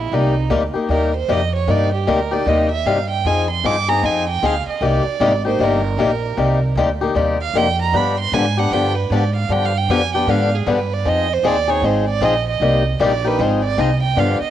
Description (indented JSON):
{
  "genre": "acoustic string swing (jazz manouche)",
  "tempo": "154 BPM",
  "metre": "4/4",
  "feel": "swing 62% on 8ths",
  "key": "C minor",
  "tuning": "A4 = 437 Hz",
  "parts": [
    { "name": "rich violin", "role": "melody", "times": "0.0-14.5 s", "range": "Eb4 to D6", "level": "-21 LUFS", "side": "right 8 dB", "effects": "cassette tape" },
    { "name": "upright bass", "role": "bass", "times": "0.0-14.4 s", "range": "G1 to Ab2", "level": "-20 LUFS", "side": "right 2 dB", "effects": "none" },
    { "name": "picked swing-style acoustic guitar", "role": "accompaniment", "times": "0.1-14.4 s", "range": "C3 to Ab4", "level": "-18 LUFS", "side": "left 4 dB", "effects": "cassette tape" }
  ],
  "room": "light reverb, studio ambience",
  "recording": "home recording on cassette",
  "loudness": "-15 LUFS",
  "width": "side -11 dB against mid",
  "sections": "0.0-14.5 A section",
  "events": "violin solo 0.0-14.5",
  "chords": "0.1 Cm7; 3.2 Fm7; 4.8 Cm7; 7.9 G7b9; 11.1 Fm7; 12.6 Cm7; 13.4 Fm7"
}